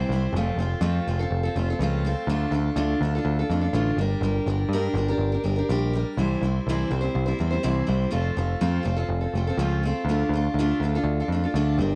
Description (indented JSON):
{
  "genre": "folk rock and heartland rock",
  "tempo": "123 BPM",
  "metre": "4/4",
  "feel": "straight",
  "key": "unclear",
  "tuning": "A4 = 440 Hz",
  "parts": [
    { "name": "picked steel-string acoustic guitar", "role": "accompaniment", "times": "0.0-12.0 s", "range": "C3 to C5", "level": "-28 LUFS", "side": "equal", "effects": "none" },
    { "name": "picked electric bass", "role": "bass", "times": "0.0-11.9 s", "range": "F1 to G2", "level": "-27 LUFS", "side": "equal", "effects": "none" }
  ],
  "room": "light reverb",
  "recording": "home recording on cassette",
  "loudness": "-25 LUFS",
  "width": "mono",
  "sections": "0.0-12.0 A section",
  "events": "none",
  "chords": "0.3 F; 2.3 Dm; 4.0 Gm; 6.2 C; 8.1 F; 10.1 Dm",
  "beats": "| 0.34 0.83 1.31 1.80 | 2.29 2.77 3.26 3.74 | 4.23 4.72 5.20 5.69 | 6.17 6.66 7.15 7.63 | 8.12 8.61 9.09 9.58 | 10.06 10.55 11.04 11.53"
}